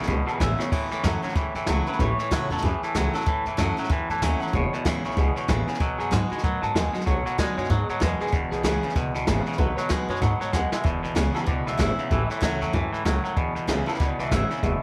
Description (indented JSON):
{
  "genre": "rockabilly",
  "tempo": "190 BPM",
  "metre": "4/4",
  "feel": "swing 60% on 8ths",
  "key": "E major",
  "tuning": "A4 = 440 Hz",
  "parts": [
    { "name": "picked steel-string acoustic guitar", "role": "accompaniment", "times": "0.0-14.8 s", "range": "E2 to F#4", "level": "-35 LUFS", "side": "equal", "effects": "none" },
    { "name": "twangy electric guitar", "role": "riff", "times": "0.0-14.8 s", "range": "E2 to G#3", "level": "-31 LUFS", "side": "equal", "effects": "none" },
    { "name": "upright bass", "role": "bass", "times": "0.0-14.8 s", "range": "E1 to A2", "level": "-30 LUFS", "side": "equal", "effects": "none" },
    { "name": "jazz brush drum kit", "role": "drums", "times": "0.0-14.7 s", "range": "crash cymbal, hi-hat, kick drum, snare drum", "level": "-30 LUFS", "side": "equal", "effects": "none" },
    { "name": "electric guitar through a small old amp", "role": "melody", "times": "0.3-14.8 s", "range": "F#4 to A5", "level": "-34 LUFS", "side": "equal", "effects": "subtle chorus, tape echo" }
  ],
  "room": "small room reverb",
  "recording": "none",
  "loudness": "-25 LUFS",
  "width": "mono",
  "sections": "0.0-10.9 A section; 10.9-14.8 B section",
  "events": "drum fill 0.6, 10.5-10.9; clean electric guitar solo 10.9-14.8",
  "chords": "0.0 E; 0.7 A; 4.5 E; 5.8 B; 8.3 E; 9.6 B; 10.9 E; 12.1 A; 13.4 E",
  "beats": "0.09 0.41 | 0.72 1.04 1.36 1.68 | 2.00 2.31 2.63 2.95 | 3.27 3.58 3.90 4.22 | 4.54 4.85 5.17 5.49 | 5.80 6.12 6.43 6.75 | 7.07 7.38 7.70 8.01 | 8.33 8.64 8.96 9.28 | 9.59 9.91 10.22 10.54 | 10.85 11.17 11.48 11.80 | 12.11 12.43 12.74 13.05 | 13.37 13.69 14.00 14.31 | 14.63"
}